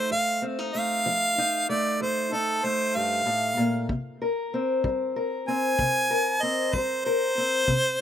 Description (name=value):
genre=acoustic country blues, solo or duo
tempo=63 BPM (dotted quarters)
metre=12/8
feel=straight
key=F mixolydian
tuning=A4 = 440 Hz
part: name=bright harmonica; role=melody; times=0.0-8.0 s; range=A4 to Ab5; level=-24 LUFS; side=right 1 dB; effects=none
part: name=fingerpicked steel-string acoustic guitar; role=accompaniment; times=0.0-8.0 s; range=F2 to Bb4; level=-27 LUFS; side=left 2 dB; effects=slapback echo
part: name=kick drum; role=drums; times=3.9-7.8 s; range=none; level=-31 LUFS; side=left 1 dB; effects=none
room=little or no reverb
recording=recorded outdoors, with no room sound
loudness=-23 LUFS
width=side -10 dB against mid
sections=0.0-8.0 A section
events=harmonica solo 0.0-8.0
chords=0.0 F7; 3.9 C7(no3)